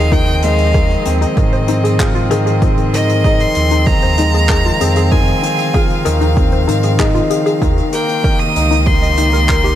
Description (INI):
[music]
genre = piano and strings electronica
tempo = 96 BPM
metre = 4/4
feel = straight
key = F minor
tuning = A4 = 440 Hz
[part]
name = bright violin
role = melody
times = 0.0-9.8 s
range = Eb5 to Eb6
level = -19 LUFS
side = equal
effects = none
[part]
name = bright string quartet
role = sustained chords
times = 0.0-9.8 s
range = Eb3 to F5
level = -22 LUFS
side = right 2 dB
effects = sidechain pumping
[part]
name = warbly dusty pluck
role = arpeggios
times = 0.0-9.7 s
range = Eb4 to Eb5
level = -22 LUFS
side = left 3 dB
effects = chorus, sidechain pumping, ping-pong delay
[part]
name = warm upright piano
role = riff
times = 0.0-9.8 s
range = Eb3 to Bb4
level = -18 LUFS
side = left 2 dB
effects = ping-pong delay
[part]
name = warm sub bass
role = bass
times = 0.0-9.8 s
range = Db2 to Ab2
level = -16 LUFS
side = right 1 dB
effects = sidechain pumping
[part]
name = electronic kick drum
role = drums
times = 0.1-9.6 s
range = none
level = -15 LUFS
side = right 1 dB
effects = overdrive
[part]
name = vintage brush drum kit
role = drums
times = 0.1-9.8 s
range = handclaps, hi-hat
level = -27 LUFS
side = left 1 dB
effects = none
[sound]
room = light reverb, small room reverb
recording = none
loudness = -11 LUFS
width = side -11 dB against mid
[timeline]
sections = 0.0-9.8 A section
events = none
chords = 0.0 Fm7; 7.6 Eb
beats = | 0.12 0.74 1.37 2.00 | 2.62 3.25 3.87 4.50 | 5.12 5.75 6.37 7.00 | 7.62 8.24 8.87 9.49